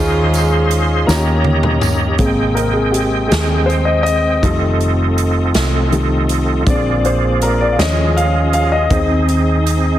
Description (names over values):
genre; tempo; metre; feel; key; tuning
slow gospel; 54 BPM (dotted quarters); 6/8; straight; Ab major; A4 = 442 Hz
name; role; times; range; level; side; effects
bright saxophone section; melody; 0.0-1.5 s; Ab3 to F4; -22 LUFS; right 1 dB; tape echo
warm grand piano; accompaniment; 0.0-10.0 s; C3 to F5; -17 LUFS; left 1 dB; none
bright tonewheel organ; sustained chords; 0.0-10.0 s; Ab3 to C6; -19 LUFS; right 2 dB; fast rotary speaker, overdrive, chorus vibrato
hollow-body short-scale fingered electric bass; bass; 0.0-10.0 s; F1 to Eb2; -17 LUFS; equal; none
swinging big-band drum kit; drums; 0.3-9.8 s; hi-hat, kick drum, snare drum, toms; -21 LUFS; equal; none
tambourine; percussion; 0.4-2.2 s; none; -29 LUFS; right 8 dB; none
room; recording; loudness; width
light reverb, studio reverb; heavily compressed radio sound; -12 LUFS; side -12 dB against mid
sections
0.0-2.2 A section; 2.2-10.0 B section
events
drum fill 1.1-2.2; grand piano solo 2.2-10.0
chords
0.0 Ab/Eb; 1.1 Eb7; 2.2 Abmaj7; 4.4 F7; 6.7 Bb7; 7.8 Eb9sus4; 8.9 Ab/Eb